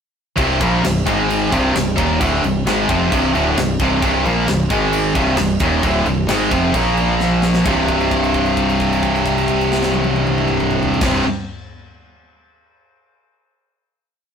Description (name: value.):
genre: heavy metal.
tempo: 132 BPM.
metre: 4/4.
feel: straight.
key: C minor.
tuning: A4 = 440 Hz.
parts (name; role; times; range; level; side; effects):
high-gain distorted guitar; riff; 0.4-11.2 s; C2 to Bb3; -15 LUFS; equal; distortion.
modern bright picked electric bass; bass; 0.4-11.2 s; C1 to Bb1; -23 LUFS; equal; none.
tight metal drum kit; drums; 0.4-11.1 s; crash cymbal, kick drum, snare drum, toms; -24 LUFS; equal; none.
room: moderate studio reverb, RT60 0.6 s.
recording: rough rehearsal-room recording, warm saturation.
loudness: -14 LUFS.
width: side -7 dB against mid.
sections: 0.4-7.7 riff; 7.7-11.3 final chord.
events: drum fill 7.2-7.7; held note 7.7-11.0.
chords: 0.4 C5; 1.1 Ab5; 1.5 Cm; 4.7 Ab5; 5.2 Cm; 6.8 Bb5; 7.7 C5.